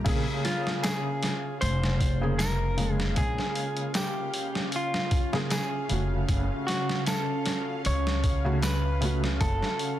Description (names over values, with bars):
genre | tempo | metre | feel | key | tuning
trip hop | 77 BPM | 4/4 | swing 54% on 16ths | unclear | A4 = 440 Hz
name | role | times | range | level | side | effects
felt-muted upright piano | accompaniment | 0.0-10.0 s | Db3 to Ab4 | -32 LUFS | equal | tremolo, tape echo
string machine, cellos | sustained chords | 0.0-10.0 s | Db4 to F5 | -35 LUFS | equal | ensemble chorus
upright bass | bass | 0.0-9.6 s | F1 to Db2 | -28 LUFS | equal | none
boom bap sampler-style drum kit | drums | 0.1-10.0 s | crash cymbal, hi-hat, kick drum, snare drum | -30 LUFS | equal | none
clean electric guitar | melody | 0.4-10.0 s | F4 to Db5 | -32 LUFS | equal | vintage 12-bit sampler grit, tape echo
tambourine | percussion | 0.8-8.8 s | none | -43 LUFS | right 5 dB | none
room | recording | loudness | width
digital ambience | dense, heavily limited modern master | -25 LUFS | side -12 dB against mid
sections
0.1-10.0 A section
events
none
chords
0.1 Bbm7; 6.3 Gbm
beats
| 0.05 0.83 1.61 2.39 | 3.17 3.95 4.73 5.51 | 6.29 7.07 7.85 8.63 | 9.40